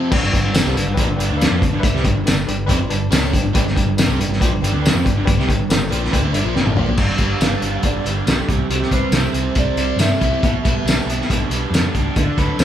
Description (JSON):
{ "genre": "classic rock", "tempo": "140 BPM", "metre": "4/4", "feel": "straight", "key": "G mixolydian", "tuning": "A4 = 439 Hz", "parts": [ { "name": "distorted electric guitar", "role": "riff", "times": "0.0-12.6 s", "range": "F2 to E4", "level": "-23 LUFS", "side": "right 4 dB", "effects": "distortion" }, { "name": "overdriven semi-hollow guitar", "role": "riff", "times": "0.0-12.6 s", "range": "F2 to C5", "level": "-26 LUFS", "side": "left 4 dB", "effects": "phaser" }, { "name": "reed electric piano", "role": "accompaniment", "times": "0.1-6.9 s", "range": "B4 to A5", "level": "-28 LUFS", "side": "left 4 dB", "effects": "fast tremolo" }, { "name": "hollow-body short-scale fingered electric bass", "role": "bass", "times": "0.1-12.6 s", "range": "F1 to G2", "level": "-22 LUFS", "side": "equal", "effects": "none" }, { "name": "cloth-damped thuddy drum kit", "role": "drums", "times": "0.1-12.6 s", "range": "crash cymbal, hi-hat, kick drum, snare drum, tambourine, toms", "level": "-18 LUFS", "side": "equal", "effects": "none" }, { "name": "electric slide guitar", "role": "melody", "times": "7.4-12.6 s", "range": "F4 to F5", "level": "-26 LUFS", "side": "right 2 dB", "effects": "digital delay" } ], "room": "moderate large studio reverb, RT60 1.2 s", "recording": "band playing live in one room", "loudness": "-15 LUFS", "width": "side -10 dB against mid", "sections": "0.1-7.0 A section; 7.0-12.6 B section", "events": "reed electric piano fill 2.9-3.5, 6.3-7.0; drum fill 6.5-7.0; electric slide guitar solo 7.0-12.6", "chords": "0.1 G; 8.5 C; 10.4 G/B", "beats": "| 0.11 0.54 0.97 1.40 | 1.83 2.26 2.69 3.12 | 3.55 3.98 4.40 4.83 | 5.26 5.69 6.12 6.55 | 6.98 7.41 7.84 8.27 | 8.70 9.13 9.57 10.00 | 10.43 10.86 11.29 11.72 | 12.15 12.59" }